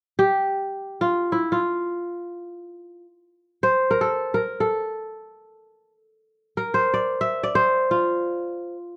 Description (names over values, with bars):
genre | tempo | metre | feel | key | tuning
west african traditional | free time | none | none | F major | A4 = 440 Hz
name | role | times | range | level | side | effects
kora | arpeggios | 0.2-9.0 s | E4 to E5 | -24 LUFS | equal | none
room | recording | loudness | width
light reverb | dark, warm production | -23 LUFS | mono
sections
0.0-9.0 A section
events
kora solo 0.0-9.0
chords
none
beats
free time